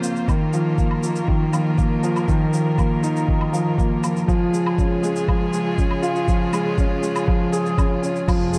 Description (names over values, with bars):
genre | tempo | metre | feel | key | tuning
piano and strings electronica | 120 BPM | 4/4 | straight | unclear | A4 = 440 Hz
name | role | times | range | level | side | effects
rich string quartet | sustained chords | 0.0-8.6 s | C3 to C5 | -31 LUFS | equal | sidechain pumping
felt-muted upright piano | riff | 0.0-8.6 s | Eb3 to Ab4 | -23 LUFS | equal | delay
dark symphonic double bass section | bass | 0.0-8.6 s | none | barely audible | none | none
electronic shaker, woodblock and crash cymbal | drums | 0.0-8.6 s | none | -35 LUFS | equal | high-pass filter on perc, high-pass filter on cymbals
electronic kick drum | drums | 0.3-8.4 s | none | -23 LUFS | equal | none
room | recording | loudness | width
moderate lush hall reverb, RT60 1.6 s, studio reverb | dark, warm production | -20 LUFS | mono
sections
0.0-8.3 A section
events
build-up 0.0-8.3; filter sweep on string quartet 0.0-8.3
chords
0.3 Ebsus2; 4.3 Db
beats
| 0.29 0.79 1.29 1.79 | 2.29 2.79 3.29 3.79 | 4.29 4.79 5.29 5.79 | 6.29 6.79 7.29 7.79 | 8.29